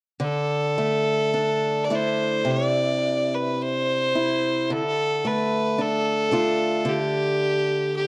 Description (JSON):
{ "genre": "celtic folk, Celtic slow air", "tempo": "52-58 BPM", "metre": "4/4", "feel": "rubato", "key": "D dorian", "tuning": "A4 = 440 Hz", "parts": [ { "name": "clear fiddle", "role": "melody", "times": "0.2-8.1 s", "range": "G4 to D5", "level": "-26 LUFS", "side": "equal", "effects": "none" }, { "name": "picked acoustic archtop guitar", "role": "accompaniment", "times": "0.2-8.1 s", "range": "C3 to F4", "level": "-27 LUFS", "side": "equal", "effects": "none" } ], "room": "moderate studio reverb, RT60 0.6 s", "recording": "cassette tape", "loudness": "-23 LUFS", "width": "mono", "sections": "0.2-8.1 A section", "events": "none", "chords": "0.2 Dsus2; 2.5 C; 4.7 Dm; 6.9 G5/D", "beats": "| 0.20 1.34 2.46 3.60 | 4.72 5.79 6.87 7.94" }